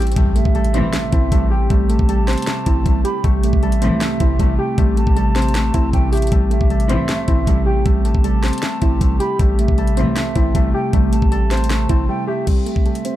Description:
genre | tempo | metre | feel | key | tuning
hip hop, trap | 156 BPM | 4/4 | half-time | A minor | A4 = 442 Hz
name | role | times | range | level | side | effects
soft round pluck | accompaniment | 0.0-13.2 s | G3 to G4 | -24 LUFS | right 4 dB | chorus, low-pass filter
concert harp | arpeggios | 0.0-13.2 s | A3 to C5 | -24 LUFS | left 8 dB | low-pass filter, tape echo
warm 808-style bass | bass | 0.0-12.1 s | A1 | -18 LUFS | equal | none
trap drum kit | drums | 0.0-13.1 s | crash cymbal, hi-hat, kick drum, snare drum | -18 LUFS | equal | none
swell and impact | sound effects | 0.0-1.7 s | none | -28 LUFS | equal | none
hollow soft pad | sustained chords | 1.0-13.2 s | C3 to G4 | -27 LUFS | right 3 dB | lush chorus, low-pass filter
mellow hollow jazz flute | second line | 0.4-13.2 s | E5 to B5 | -28 LUFS | right 5 dB | tape echo
dark studio string section | stabs | 0.7-1.1, 3.8-4.2, 6.9-7.3, 10.0-10.3 s | C2 to E3 | -25 LUFS | left 2 dB | tape echo
room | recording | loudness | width
little or no reverb | dark, warm production | -14 LUFS | side -14 dB against mid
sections
0.2-12.5 A section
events
swell 0.0; impact 0.2-1.7; break 12.1-12.5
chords
0.2 Am7

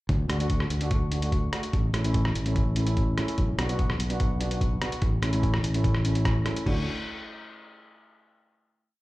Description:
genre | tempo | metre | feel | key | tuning
calypso | 146 BPM | 4/4 | straight | D major | A4 = 438 Hz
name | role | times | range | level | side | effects
modern bright fingered electric bass | bass | 0.1-6.9 s | A1 to D2 | -26 LUFS | equal | none
lo-fi sampler-style drum kit | drums | 0.1-6.8 s | crash cymbal, hi-hat, kick drum, rim click | -28 LUFS | equal | none
steel pan | accompaniment | 0.3-6.9 s | A3 to F#4 | -32 LUFS | right 1 dB | slapback echo
room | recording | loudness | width
digital ambience | live gig heard through the venue's PA, club reverb | -24 LUFS | side -18 dB against mid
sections
0.1-6.7 verse; 6.7-8.3 final chord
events
none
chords
0.1 D; 1.7 A; 3.4 Bm; 5.0 A; 6.7 D

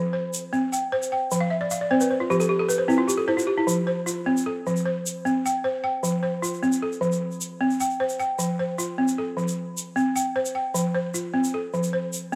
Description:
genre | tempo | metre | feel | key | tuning
west african traditional, West African string and xylophone music | 102 BPM (dotted quarters) | 12/8 | straight | F major | A4 = 438 Hz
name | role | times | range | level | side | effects
balafon | arpeggios | 0.0-12.4 s | F3 to G5 | -25 LUFS | equal | none
egg shaker | percussion | 0.3-12.4 s | none | -34 LUFS | equal | none
room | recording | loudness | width
moderate lush hall reverb, RT60 2.6 s | rough home demo mix | -25 LUFS | mono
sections
0.0-12.4 A section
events
balafon fill 1.4-3.7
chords
0.1 C5; 1.3 F5; 2.5 N.C.; 3.7 F; 4.9 C5; 6.0 F; 7.2 C5; 8.4 F; 9.6 C5; 10.7 F

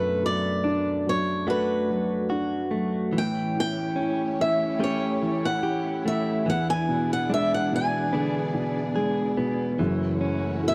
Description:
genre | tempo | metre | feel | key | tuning
acoustic folk-pop ballad | 72 BPM | 4/4 | straight | unclear | A4 = 440 Hz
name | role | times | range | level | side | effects
picked swing-style acoustic guitar | melody | 0.0-10.7 s | B4 to G#5 | -29 LUFS | equal | tape echo
felt-muted upright piano | accompaniment | 0.0-10.7 s | F#1 to F#4 | -30 LUFS | equal | none
direct-recorded clean electric guitar | arpeggios | 0.0-10.7 s | E3 to G#4 | -31 LUFS | equal | harmonic tremolo
warm symphonic string section | sustained chords | 3.1-10.7 s | A3 to D5 | -37 LUFS | equal | none
room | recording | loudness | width
studio ambience | dry, close 1970s-style studio recording | -26 LUFS | mono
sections
0.0-9.8 A section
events
none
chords
0.0 Bm7; 3.1 A7; 6.5 E7; 9.8 F#m7

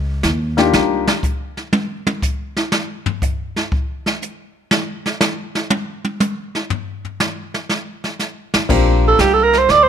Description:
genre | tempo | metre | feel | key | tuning
jazz, small-group swing and bop | 121 BPM | 4/4 | swing 69% on 8ths | unclear | A4 = 440 Hz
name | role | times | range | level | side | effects
upright bass | bass | 0.0-1.1, 8.5-9.9 s | Bb1 to Eb2 | -19 LUFS | equal | none
jazz brush drum kit | drums | 0.2-9.9 s | brushed snare drum, crash cymbal, hi-hat, kick drum, snare drum, toms | -19 LUFS | equal | none
warm concert grand piano | accompaniment | 0.6-1.1, 8.7-9.9 s | Bb3 to G4 | -18 LUFS | left 6 dB | none
breathy alto saxophone | second line | 9.1-9.9 s | G4 to D5 | -10 LUFS | right 5 dB | none
room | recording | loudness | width
light reverb | none | -16 LUFS | side -8 dB against mid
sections
0.0-8.7 A section; 8.7-9.9 A section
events
alto saxophone solo 0.0-9.9; drum solo 0.7-8.7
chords
0.0 Db69; 0.7 Cm11; 2.7 N.C.; 8.7 Bb69

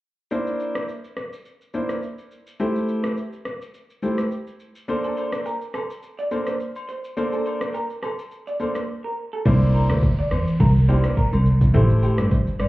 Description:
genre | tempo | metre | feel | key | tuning
afrobeats | 105 BPM | 4/4 | swing 55% on 16ths | C mixolydian | A4 = 438 Hz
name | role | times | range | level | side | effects
warm grand piano | accompaniment | 0.3-12.3 s | A3 to C5 | -25 LUFS | left 1 dB | none
afro-pop drum kit | drums | 0.3-12.7 s | crash cymbal, kick drum, rim click, shaker | -24 LUFS | equal | overdrive
agogo bells and woodblock | percussion | 4.9-12.7 s | none | -38 LUFS | left 3 dB | none
electric guitar through a small old amp | riff | 5.0-12.7 s | G4 to D5 | -30 LUFS | right 2 dB | spring reverb, slapback echo
rich cello | bass | 9.5-12.7 s | C2 to A2 | -18 LUFS | equal | none
downlifter | sound effects | 9.5-12.7 s | none | -46 LUFS | right 1 dB | none
room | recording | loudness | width
light reverb | heard muffled through a wall, club reverb, EQ | -20 LUFS | side -18 dB against mid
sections
0.3-9.5 A section; 9.5-12.7 B section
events
break 8.9-9.5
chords
0.3 C9; 2.6 Am7; 4.9 Bbmaj9; 9.5 C9; 11.7 Am7

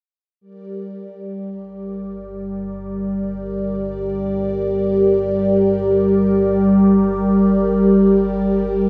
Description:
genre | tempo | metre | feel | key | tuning
ambient, sequencer-driven space music | free time | none | none | G minor | A4 = 439 Hz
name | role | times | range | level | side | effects
phased analog pad | sustained chords | 0.4-8.9 s | G3 to D5 | -18 LUFS | equal | phaser, chorus
analog drone | bass | 2.0-8.9 s | G1 | -34 LUFS | equal | chorus, tube saturation
room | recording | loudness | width
wet cathedral reverb, RT60 5.8 s | in a vast, echoing space | -17 LUFS | mono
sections
0.4-8.9 A section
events
fade-in on synth drone 0.4-8.9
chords
0.4 Gm

